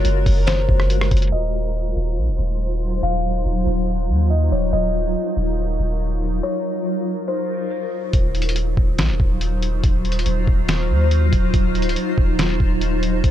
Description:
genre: hip hop, atmospheric cloud-rap.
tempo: 141 BPM.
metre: 4/4.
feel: half-time.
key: Eb dorian.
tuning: A4 = 441 Hz.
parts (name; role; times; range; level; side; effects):
kalimba; melody; 0.0-7.7 s; C5 to F5; -27 LUFS; left 3 dB; low-pass filter, tape echo.
granular cloud pad; sustained chords; 0.0-13.3 s; Gb3 to C5; -24 LUFS; equal; built-in reverb, sidechain pumping.
long sustained 808-style bass; bass; 0.0-13.3 s; Db1 to Eb2; -20 LUFS; equal; none.
lo-fi sampler-style drum kit; drums; 0.0-1.3, 8.1-13.3 s; hi-hat, kick drum, rim click, snare drum; -19 LUFS; equal; none.
room: little or no reverb.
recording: dark, warm production, low-pass filter.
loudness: -17 LUFS.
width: side -12 dB against mid.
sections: 0.0-1.3 A section; 1.3-8.1 B section; 8.1-13.3 C section.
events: filter sweep 1.3-8.1; break 6.4-8.1.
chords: 0.0 Gbmaj9; 1.3 Ebm69.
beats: 0.05 0.47 0.90 | 1.33 1.75 2.18 2.60 | 3.03 3.45 3.88 4.30 | 4.73 5.16 5.58 6.01 | 6.43 6.86 7.28 7.71 | 8.13 8.56 8.99 9.41 | 9.84 10.26 10.69 11.11 | 11.54 11.96 12.39 12.81 | 13.24.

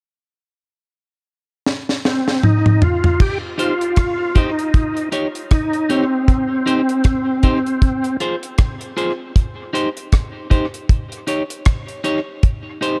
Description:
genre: roots reggae.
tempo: 78 BPM.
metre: 4/4.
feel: swing 58% on 16ths.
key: unclear.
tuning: A4 = 440 Hz.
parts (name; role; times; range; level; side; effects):
deep reggae drum kit; drums; 1.7-13.0 s; crash cymbal, hi-hat, kick drum, rim click, snare drum, toms; -18 LUFS; equal; none.
bright tonewheel organ; melody; 2.1-8.2 s; C4 to G4; -22 LUFS; equal; overdrive, chorus vibrato, slow rotary speaker, tape echo.
electric guitar at the edge of break-up; accompaniment; 3.6-13.0 s; Eb4 to Db5; -26 LUFS; equal; harmonic tremolo, tape echo.
room: small room ambience.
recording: echo-heavy mix.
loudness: -18 LUFS.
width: mono.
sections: 0.1-3.2 A section; 3.2-13.0 B section.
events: drum fill 1.7-3.2.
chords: 0.1 N.C.; 3.2 Eb69; 4.7 Eb7; 6.3 Cm; 7.8 Fm; 9.4 Eb6; 10.9 Eb7; 12.4 Eb6.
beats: | 0.12 0.89 1.66 2.43 | 3.20 3.97 4.74 5.51 | 6.28 7.05 7.82 8.59 | 9.36 10.13 10.90 11.66 | 12.44.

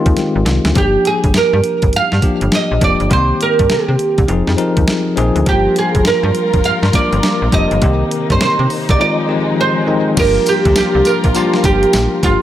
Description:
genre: R&B, new jack swing.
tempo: 102 BPM.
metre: 4/4.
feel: swing 64% on 16ths.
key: unclear.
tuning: A4 = 443 Hz.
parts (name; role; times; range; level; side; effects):
bell-like tine electric piano; accompaniment; 0.0-12.4 s; Eb3 to C5; -18 LUFS; left 3 dB; fast stereo tremolo.
slap-like FM bass; bass; 0.1-12.4 s; F1 to C3; -17 LUFS; equal; none.
crisp 8-bit digital drum machine; drums; 0.1-12.4 s; crash cymbal, hi-hat, kick drum, snare drum, tambourine; -17 LUFS; equal; none.
oud; melody; 0.8-12.4 s; F4 to F5; -15 LUFS; right 3 dB; tape echo.
dark studio string section; sustained chords; 5.5-12.4 s; C3 to Bb4; -22 LUFS; left 2 dB; none.
room: light reverb.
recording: none.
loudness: -11 LUFS.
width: side -12 dB against mid.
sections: 0.8-10.2 A section; 10.2-12.4 B section.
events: drum fill 0.2-0.8; silent gap 9.0-10.2.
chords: 0.0 Fm7; 0.8 Gm7; 3.1 Cm7; 4.3 Fm7; 5.5 Gm7; 7.8 Cm7; 9.0 Fm7; 10.2 Gm7.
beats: 0.17 | 0.76 1.35 1.93 2.52 | 3.11 3.70 4.29 4.88 | 5.46 6.05 6.64 7.23 | 7.82 8.40 8.99 9.58 | 10.17 10.76 11.35 11.93.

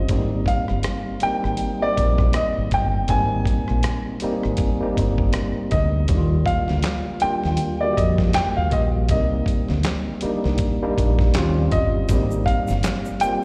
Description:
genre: R&B, neo-soul.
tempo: 80 BPM.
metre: 4/4.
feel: swing 57% on 16ths.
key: unclear.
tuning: A4 = 441 Hz.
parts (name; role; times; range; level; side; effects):
clear grand piano; melody; 0.0-13.4 s; D5 to Ab5; -27 LUFS; equal; slapback echo, tape echo.
tine electric piano; accompaniment; 0.0-13.4 s; D3 to C5; -28 LUFS; equal; overdrive, slapback echo.
deep dub fingered electric bass; bass; 0.0-13.3 s; G1 to F2; -24 LUFS; equal; none.
dusty soul sampler-style drum kit; drums; 0.1-13.4 s; handclaps, hi-hat, kick drum, rim click, snare drum; -26 LUFS; equal; none.
tube shaker and finger snaps; percussion; 12.1-13.4 s; none; -44 LUFS; equal; none.
room: light reverb, small room ambience.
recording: live gig heard through the venue's PA, recital hall reverb.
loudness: -21 LUFS.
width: mono.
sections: 0.0-6.1 A section; 6.1-13.4 A section.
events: none.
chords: 0.1 Abmaj7; 6.1 Ebmaj7; 9.1 Cm7; 11.3 Eb13; 12.1 Abmaj7.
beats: | 0.09 0.84 1.59 2.34 | 3.09 3.84 4.59 5.34 | 6.09 6.84 7.59 8.34 | 9.09 9.84 10.59 11.34 | 12.09 12.84.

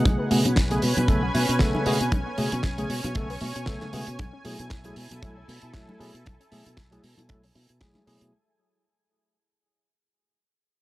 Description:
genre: nu-disco, nu disco.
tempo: 116 BPM.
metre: 4/4.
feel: swing 56% on 16ths.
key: unclear.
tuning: A4 = 439 Hz.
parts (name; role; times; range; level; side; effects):
tine electric piano; accompaniment; 0.0-8.3 s; C#3 to A4; -28 LUFS; equal; tape echo.
fingered electric bass; bass; 0.0-8.3 s; B1 to B2; -28 LUFS; equal; sidechain pumping.
lush unison pad; sustained chords; 0.1-8.3 s; C#4 to G#5; -32 LUFS; equal; chorus, sidechain pumping.
analog pluck; arpeggios; 0.1-8.3 s; G#3 to G#4; -34 LUFS; left 2 dB; none.
damped 70s drum kit; drums; 0.1-8.3 s; hi-hat, snare drum; -31 LUFS; right 2 dB; none.
kick drum; drums; 0.1-7.9 s; none; -24 LUFS; equal; none.
congas; percussion; 0.1-8.0 s; none; -34 LUFS; equal; none.
room: small room ambience.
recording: dry, gritty hardware recording.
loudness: -22 LUFS.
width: side -17 dB against mid.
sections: 0.0-8.3 A section.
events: fade-out 0.0-8.3.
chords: 0.1 Amaj9/B; 4.2 F#m9/B.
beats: | 0.05 0.57 1.09 1.60 | 2.12 2.64 3.16 3.67 | 4.19 4.71 5.22 5.74 | 6.26 6.78 7.29 7.81.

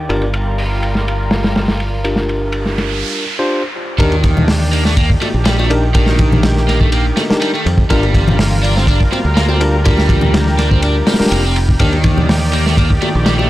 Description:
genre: breakbeat, breaks.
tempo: 123 BPM.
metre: 4/4.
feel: straight.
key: unclear.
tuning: A4 = 440 Hz.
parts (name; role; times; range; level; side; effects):
lush unison pad; sustained chords; 0.0-13.5 s; Eb3 to D5; -22 LUFS; equal; chorus, vintage 12-bit sampler grit, sidechain pumping.
fingered electric bass; bass; 0.0-13.5 s; F1 to F2; -16 LUFS; equal; none.
bell-like tine electric piano; stabs; 0.1-11.9 s; D4 to C5; -20 LUFS; left 1 dB; low-pass filter, analog delay.
crunchy breakbeat drum kit; drums; 0.1-13.4 s; hi-hat, kick drum, ride cymbal, snare drum; -16 LUFS; equal; low-pass filter on kick, low-pass filter on cymbals, low-pass filter on hats, low-pass filter on snare, low-pass filter on room.
noise sweep; sound effects; 2.4-4.0 s; none; -24 LUFS; right 3 dB; none.
overdriven electric guitar; riff; 4.0-13.5 s; Eb3 to D4; -20 LUFS; right 1 dB; analog delay.
bongos and congas; percussion; 4.1-13.5 s; none; -21 LUFS; left 2 dB; none.
room: studio reverb.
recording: dry, gritty hardware recording, transformer saturation.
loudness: -12 LUFS.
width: side -16 dB against mid.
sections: 0.0-4.0 A section; 4.0-13.5 B section.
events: noise sweep 2.4-4.0; drop 4.0-13.5.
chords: 0.1 Gm7; 4.0 Ebmaj7; 7.9 Gm7; 11.8 Ebmaj7.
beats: | 0.10 0.58 1.07 1.56 | 2.05 2.54 3.02 3.51 | 4.00 4.49 4.97 5.46 | 5.95 6.44 6.92 7.41 | 7.90 8.39 8.88 9.36 | 9.85 10.34 10.83 11.31 | 11.80 12.29 12.78 13.27.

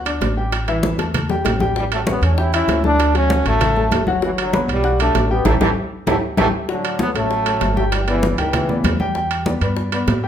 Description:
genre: latin, salsa.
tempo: 195 BPM.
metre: 4/4.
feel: straight.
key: D major.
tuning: A4 = 439 Hz.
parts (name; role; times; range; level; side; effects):
clear concert grand piano; accompaniment; 0.0-10.3 s; E3 to G6; -23 LUFS; left 2 dB; none.
upright bass; bass; 0.0-10.3 s; G1 to A2; -21 LUFS; equal; none.
bongos; percussion; 0.1-10.2 s; none; -29 LUFS; left 5 dB; none.
congas; percussion; 0.1-10.2 s; none; -24 LUFS; left 1 dB; none.
timbales; percussion; 0.1-10.2 s; none; -24 LUFS; right 5 dB; none.
bright trombone section; melody; 1.8-9.0 s; A2 to E4; -20 LUFS; equal; none.
room: wet large studio reverb, RT60 0.9 s.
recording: band playing live in one room.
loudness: -16 LUFS.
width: side -9 dB against mid.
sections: 0.0-6.7 A section; 6.7-10.3 B section.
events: drum fill 0.8-1.8, 6.2-6.7; band accent 5.5-6.7.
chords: 0.0 G5; 0.5 A5; 1.8 A7; 3.0 Dmaj7; 4.2 Gmaj7; 5.5 A5; 6.7 Dmaj7; 7.9 G6; 9.2 Em7.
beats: 0.21 | 0.52 0.83 1.14 1.45 | 1.76 2.07 2.38 2.68 | 2.99 3.30 3.61 3.92 | 4.22 4.53 4.84 5.15 | 5.46 5.76 6.07 6.38 | 6.69 7.00 7.30 7.61 | 7.92 8.23 8.54 8.85 | 9.15 9.46 9.77 10.08.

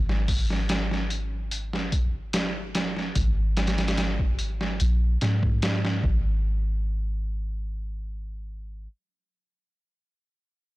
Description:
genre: trip hop.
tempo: 73 BPM.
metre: 4/4.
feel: straight.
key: unclear.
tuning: A4 = 440 Hz.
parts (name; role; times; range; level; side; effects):
soft 808-style bass; bass; 0.0-8.9 s; G#1 to G#2; -27 LUFS; equal; tube saturation.
trip hop sampler-style drum kit; drums; 0.1-6.2 s; hi-hat, kick drum, snare drum; -26 LUFS; equal; none.
room: little or no reverb.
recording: blown-out, overdriven recording, overdrive.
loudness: -24 LUFS.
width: side -19 dB against mid.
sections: 0.0-6.4 A section; 6.4-9.7 B section.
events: none.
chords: none.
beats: 0.69 1.52 2.34 | 3.16 3.98 4.80 5.62 | 6.45 7.27 8.09.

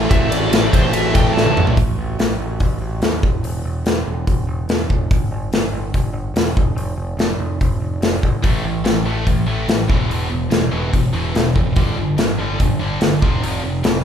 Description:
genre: hard rock.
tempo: 144 BPM.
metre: 4/4.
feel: straight.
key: A minor.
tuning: A4 = 440 Hz.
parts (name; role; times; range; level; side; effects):
heavy high-gain guitar; riff; 0.0-1.8, 8.4-14.0 s; E2 to A3; -21 LUFS; equal; distortion.
raw garage guitar; riff; 0.0-1.8 s; A2 to E4; -21 LUFS; left 1 dB; overdrive.
growling picked electric bass; bass; 0.0-14.0 s; E1 to D#2; -23 LUFS; equal; overdrive.
dark smooth lead guitar; melody; 0.1-1.6 s; C5 to A5; -23 LUFS; equal; overdrive.
big rock drum kit; drums; 0.1-13.9 s; hi-hat, kick drum, ride cymbal, snare drum, toms; -18 LUFS; equal; none.
room: light reverb.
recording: band playing live in one room.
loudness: -16 LUFS.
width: side -8 dB against mid.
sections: 0.0-1.8 A section; 1.8-14.0 B section.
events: drum fill 1.3-1.8.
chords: 0.0 Am; 1.8 N.C.; 5.1 Em; 6.6 N.C.; 8.4 A5; 9.9 E5; 11.8 G5; 13.2 F5.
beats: | 0.10 0.52 0.93 1.35 | 1.76 2.18 2.60 3.02 | 3.43 3.85 4.27 4.68 | 5.10 5.52 5.94 6.35 | 6.77 7.19 7.60 8.02 | 8.44 8.85 9.27 9.68 | 10.10 10.52 10.93 11.35 | 11.76 12.18 12.59 13.01 | 13.42 13.84.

